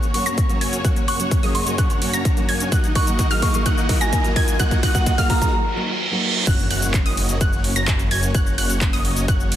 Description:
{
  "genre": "EDM, festival progressive house",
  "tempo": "128 BPM",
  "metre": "4/4",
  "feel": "straight",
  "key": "F# major",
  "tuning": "A4 = 440 Hz",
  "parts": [
    { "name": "rich symphonic string section", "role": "sustained chords", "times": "0.0-9.6 s", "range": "D#2 to C#5", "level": "-31 LUFS", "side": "left 2 dB", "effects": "sidechain pumping" },
    { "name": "wide unison pluck", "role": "arpeggios", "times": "0.0-9.6 s", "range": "D#6 to A#6", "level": "-27 LUFS", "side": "right 1 dB", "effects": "sidechain pumping, tape echo" },
    { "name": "dense compressed supersaw", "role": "riff", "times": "0.0-9.6 s", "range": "A#3 to A#5", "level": "-28 LUFS", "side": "equal", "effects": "sidechain pumping, low-pass filter, tape echo" },
    { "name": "big-room dance drum kit", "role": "drums", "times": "0.0-9.6 s", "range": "crash cymbal, handclaps, hi-hat, shaker", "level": "-26 LUFS", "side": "equal", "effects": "overdrive" },
    { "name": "riser, reverse cymbal and impact", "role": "sound effects", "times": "0.0-8.3 s", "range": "none", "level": "-28 LUFS", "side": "right 2 dB", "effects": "none" },
    { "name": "soft synth bell", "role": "melody", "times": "0.1-5.5 s", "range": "F#5 to C#6", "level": "-27 LUFS", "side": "equal", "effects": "chorus, phaser, tape echo" },
    { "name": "fingerpicked steel-string acoustic guitar", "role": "accompaniment", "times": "0.1-6.4 s", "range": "F#3 to G#4", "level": "-28 LUFS", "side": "right 1 dB", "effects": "sidechain pumping, tape echo" },
    { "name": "electronic kick drum", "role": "drums", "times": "0.4-9.4 s", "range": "none", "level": "-20 LUFS", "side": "equal", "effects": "none" },
    { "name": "wide detuned saw bass", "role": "bass", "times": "6.5-9.6 s", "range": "F#1", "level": "-24 LUFS", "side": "equal", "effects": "chorus, sidechain pumping" }
  ],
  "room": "moderate digital room reverb, RT60 1.1 s",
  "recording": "dense, heavily limited modern master",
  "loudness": "-17 LUFS",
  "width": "side -11 dB against mid",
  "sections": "0.0-6.5 A section; 6.5-9.6 B section",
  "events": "build-up 0.0-6.5; drum fill 0.0-5.5; riser 0.0-5.5; break 5.5-6.5; reverse cymbal 5.5-6.5; drop 6.5-9.6; impact 6.5-8.3",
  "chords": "0.0 F#; 2.7 D#m; 6.5 F#"
}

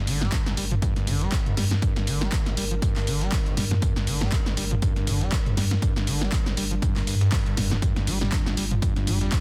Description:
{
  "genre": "acid house",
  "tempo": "120 BPM",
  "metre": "4/4",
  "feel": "swing 56% on 16ths",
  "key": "G minor",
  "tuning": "A4 = 440 Hz",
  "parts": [
    { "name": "dark analog pad", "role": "sustained chords", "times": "0.0-9.4 s", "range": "G3 to Bb4", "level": "-39 LUFS", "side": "equal", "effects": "chorus, sidechain pumping" },
    { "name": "overdriven acid bass", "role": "riff", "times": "0.0-9.4 s", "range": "G1 to G3", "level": "-32 LUFS", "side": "equal", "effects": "distortion, tube saturation" },
    { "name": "saturated sub bass", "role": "bass", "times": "0.1-9.3 s", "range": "F1 to G2", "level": "-29 LUFS", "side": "equal", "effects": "sidechain pumping" },
    { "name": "dusty soul sampler-style drum kit", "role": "drums", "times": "0.1-9.4 s", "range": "hi-hat, snare drum, tambourine", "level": "-42 LUFS", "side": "equal", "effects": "none" },
    { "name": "punchy analog drum machine", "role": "drums", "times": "0.1-9.4 s", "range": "handclaps, hi-hat, snare drum, toms", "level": "-30 LUFS", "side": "equal", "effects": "overdrive" },
    { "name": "electronic kick drum", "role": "drums", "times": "0.3-9.4 s", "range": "none", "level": "-28 LUFS", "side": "equal", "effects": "overdrive" }
  ],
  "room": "little or no reverb",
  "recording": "dense, heavily limited modern master",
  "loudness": "-24 LUFS",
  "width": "mono",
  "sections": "0.0-9.4 A section",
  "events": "none",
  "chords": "0.0 Gm"
}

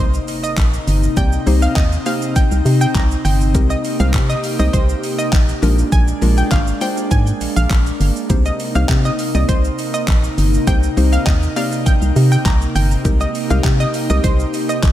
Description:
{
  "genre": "dance-pop",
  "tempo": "101 BPM",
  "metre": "4/4",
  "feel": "straight",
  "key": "C minor",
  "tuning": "A4 = 439 Hz",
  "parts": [
    { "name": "analog pluck", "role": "melody", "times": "0.0-14.9 s", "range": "C5 to Bb5", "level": "-24 LUFS", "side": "right 1 dB", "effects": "chorus, tape echo" },
    { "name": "mallet-like synth pluck", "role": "accompaniment", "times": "0.0-14.9 s", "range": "Ab3 to D5", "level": "-24 LUFS", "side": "left 3 dB", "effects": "chorus, sidechain pumping" },
    { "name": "airy breathy pad", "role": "sustained chords", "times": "0.0-14.9 s", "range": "C3 to G4", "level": "-22 LUFS", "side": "left 1 dB", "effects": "chorus, sidechain pumping" },
    { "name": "organ-like FM bass", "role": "bass", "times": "0.0-14.9 s", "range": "G1 to C3", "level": "-16 LUFS", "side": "equal", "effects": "sidechain pumping" },
    { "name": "impact", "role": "sound effects", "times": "0.4-1.2 s", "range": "none", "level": "-41 LUFS", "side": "equal", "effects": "none" },
    { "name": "pop drum kit", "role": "drums", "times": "0.1-14.9 s", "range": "handclaps, hi-hat, kick drum, shaker", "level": "-18 LUFS", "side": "equal", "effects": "overdrive" }
  ],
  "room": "light reverb",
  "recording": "none",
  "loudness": "-14 LUFS",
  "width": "side -12 dB against mid",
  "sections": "0.0-14.9 A section",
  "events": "impact 0.0-1.2",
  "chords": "0.0 Cm7; 3.5 Abmaj9/C; 5.6 Bb7; 8.3 Cm7; 13.1 Abmaj9/C"
}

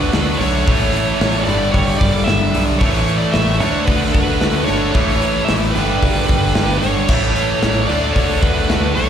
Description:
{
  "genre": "hard rock",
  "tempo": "112 BPM",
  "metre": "4/4",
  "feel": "straight",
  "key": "A mixolydian",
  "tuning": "A4 = 440 Hz",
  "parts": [
    { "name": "high-gain lead guitar", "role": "melody", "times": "0.0-9.1 s", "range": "B4 to E5", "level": "-21 LUFS", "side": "right 3 dB", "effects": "distortion, slapback echo" },
    { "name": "octave-fuzz lead guitar", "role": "second line", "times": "0.0-9.1 s", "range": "F#4 to C#5", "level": "-30 LUFS", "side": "right 2 dB", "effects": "distortion, slapback echo" },
    { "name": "overdriven tonewheel organ", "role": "sustained chords", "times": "0.0-9.1 s", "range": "none", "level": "barely audible", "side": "none", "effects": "none" },
    { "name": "heavy high-gain guitar", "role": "riff", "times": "0.0-9.1 s", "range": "G2 to D4", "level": "-24 LUFS", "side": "equal", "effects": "distortion, slapback echo" },
    { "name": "overdriven electric guitar", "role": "riff", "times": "0.0-9.1 s", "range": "G2 to D4", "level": "-23 LUFS", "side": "right 12 dB", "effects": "slapback echo" },
    { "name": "overdriven semi-hollow guitar", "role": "riff", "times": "0.0-9.1 s", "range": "G2 to D4", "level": "-22 LUFS", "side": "left 11 dB", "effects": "spring reverb, slapback echo" },
    { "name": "modern bright picked electric bass", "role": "bass", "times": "0.0-9.1 s", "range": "G1 to D2", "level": "-20 LUFS", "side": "equal", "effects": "none" },
    { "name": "gated 80s drum kit", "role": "drums", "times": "0.1-9.1 s", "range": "crash cymbal, hi-hat, kick drum, snare drum", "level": "-20 LUFS", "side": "equal", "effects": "none" }
  ],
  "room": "small room ambience",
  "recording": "live gig heard through the venue's PA, recital hall reverb",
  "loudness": "-14 LUFS",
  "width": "side -8 dB against mid",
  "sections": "0.0-9.1 A section",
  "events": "none",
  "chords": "0.0 D; 0.7 A; 1.5 G; 2.8 A; 3.6 D; 4.9 A; 5.8 G; 7.1 A; 7.9 D"
}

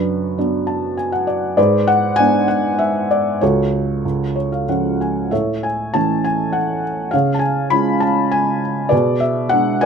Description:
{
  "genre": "classical, lyrical solo piano",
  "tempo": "93-102 BPM",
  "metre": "3/4",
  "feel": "rubato",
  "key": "unclear",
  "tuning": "A4 = 440 Hz",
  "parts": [
    { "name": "felt-muted upright piano", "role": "solo", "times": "0.0-9.9 s", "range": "C#2 to B5", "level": "-15 LUFS", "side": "equal", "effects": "none" }
  ],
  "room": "light reverb",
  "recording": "none",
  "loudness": "-15 LUFS",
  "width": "side -6 dB against mid",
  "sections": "0.0-9.9 A section",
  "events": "felt piano fill 0.4-1.6, 4.0-5.3",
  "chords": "0.0 Bm/F#; 1.6 G#dim; 3.4 F#m/C#; 4.0 C#; 5.3 A; 7.1 C#; 8.9 G#dim/B"
}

